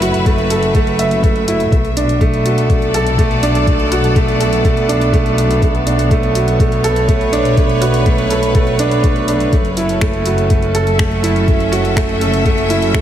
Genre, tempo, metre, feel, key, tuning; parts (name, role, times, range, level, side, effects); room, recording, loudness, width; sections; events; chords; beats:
piano and strings electronica; 123 BPM; 4/4; straight; B minor; A4 = 440 Hz
clear symphonic string section; sustained chords; 0.0-13.0 s; B2 to E5; -20 LUFS; left 1 dB; sidechain pumping
clear upright piano; riff; 0.0-13.0 s; A3 to E5; -16 LUFS; right 2 dB; digital delay
dark studio double bass section; bass; 0.0-13.0 s; F#1 to B1; -18 LUFS; equal; sidechain pumping
deep house drum kit; drums; 0.0-13.0 s; finger snaps, hi-hat; -26 LUFS; equal; overdrive
electronic kick drum; drums; 0.3-13.0 s; -15 LUFS; left 1 dB
light reverb, studio reverb; -12 LUFS; side -10 dB against mid
0.0-13.0 A section
0.0 F#m7; 1.7 Bm7; 9.5 F#m7
0.26 0.75 1.24 | 1.72 2.21 2.70 3.19 | 3.67 4.16 4.65 5.14 | 5.63 6.11 6.60 7.09 | 7.58 8.06 8.55 9.04 | 9.53 10.02 10.50 10.99 | 11.48 11.97 12.46 12.94